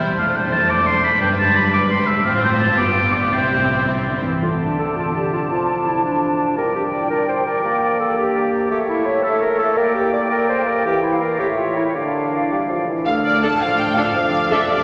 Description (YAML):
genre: classical, dramatic, fast romantic movement for symphony orchestra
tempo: 106-118 BPM (dotted quarters)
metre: 6/8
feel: rubato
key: C major, D minor from 4.4 s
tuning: A4 = 440 Hz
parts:
  - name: warm symphonic violin section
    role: melody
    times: 0.0-4.2, 13.1-14.8 s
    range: G4 to A5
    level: -29 LUFS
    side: equal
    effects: none
  - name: warm symphonic violin section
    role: second line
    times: 0.0-4.2, 13.1-14.8 s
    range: D4 to A5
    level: -30 LUFS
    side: equal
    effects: none
  - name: clear symphonic viola section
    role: accompaniment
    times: 0.0-4.2, 13.4-14.6 s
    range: G3 to A4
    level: -27 LUFS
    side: equal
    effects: none
  - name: dark symphonic cello section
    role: bass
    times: 0.0-4.4, 13.1-14.8 s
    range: D2 to E3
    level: -29 LUFS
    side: equal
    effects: none
  - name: warm studio double bass section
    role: bass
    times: 0.0-4.2, 13.1-14.8 s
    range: E1 to D2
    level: -33 LUFS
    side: equal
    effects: none
  - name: clear oboe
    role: second line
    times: 0.2-14.8 s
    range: C5 to D6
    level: -24 LUFS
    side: equal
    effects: none
  - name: hollow flute section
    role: second line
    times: 4.4-14.8 s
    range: E5 to F6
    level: -26 LUFS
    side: equal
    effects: none
  - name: warm clarinet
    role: second line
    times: 4.4-14.8 s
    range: D4 to D5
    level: -24 LUFS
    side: equal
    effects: none
  - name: mellow bassoon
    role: accompaniment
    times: 4.4-14.8 s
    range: A2 to Bb3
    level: -26 LUFS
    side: equal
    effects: none
  - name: mellow French horn section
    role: sustained chords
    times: 13.1-14.8 s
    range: A3 to D4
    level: -29 LUFS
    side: equal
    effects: none
room: wet cathedral reverb, RT60 7.1 s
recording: none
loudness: -18 LUFS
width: mono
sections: 0.0-4.4 A section; 4.4-13.1 B section; 13.1-14.8 B section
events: none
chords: 0.2 F6; 1.2 G; 2.3 F/A; 2.8 G7; 3.3 C; 4.4 D5; 5.5 Dm/F; 6.6 G5; 7.6 Gm/Bb; 8.7 A; 9.8 Bb6; 10.8 Em7b5; 11.4 A; 11.9 Dm; 14.2 Dm/F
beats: | 0.19 0.70 | 1.22 1.74 | 2.25 2.79 | 3.33 3.88 | 4.42 4.97 | 5.51 6.04 | 6.58 7.11 | 7.65 8.18 | 8.71 9.24 | 9.77 10.31 | 10.85 11.39 | 11.95 12.51 | 13.07 13.61 | 14.15 14.70